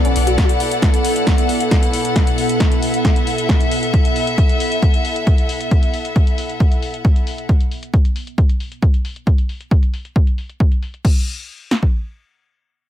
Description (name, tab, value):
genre	driving peak-time techno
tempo	135 BPM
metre	4/4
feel	straight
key	B minor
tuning	A4 = 437 Hz
part	deep dark ambient pad	drone	0.0-7.5 s	B2 to B3	-25 LUFS	right 2 dB	chorus, built-in reverb, sidechain pumping
part	punchy analog drum machine	drums	0.0-11.1 s	crash cymbal, hi-hat, snare drum	-25 LUFS	left 1 dB	overdrive, sidechain pumping on hats, low-pass filter on hats, sidechain pumping on toms, low-pass filter on toms, sidechain pumping on cymbals, low-pass filter on cymbals, low-pass filter on snare
part	dark chamber string section	texture	0.0-7.5 s	E4 to F#5	-21 LUFS	left 2 dB	sidechain pumping
part	punchy analog drum machine	drums	0.4-11.9 s	kick drum, snare drum	-14 LUFS	equal	overdrive
room	digital ambience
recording	none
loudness	-14 LUFS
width	side -12 dB against mid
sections	0.0-11.0 A section; 11.0-12.9 B section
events	filter sweep on drum 0.0-11.0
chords	0.0 Bm; 11.0 N.C.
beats	| 0.38 0.82 1.27 1.71 | 2.16 2.60 3.05 3.49 | 3.94 4.38 4.82 5.27 | 5.71 6.16 6.60 7.05 | 7.49 7.93 8.38 8.82 | 9.27 9.71 10.16 10.60 | 11.05 11.49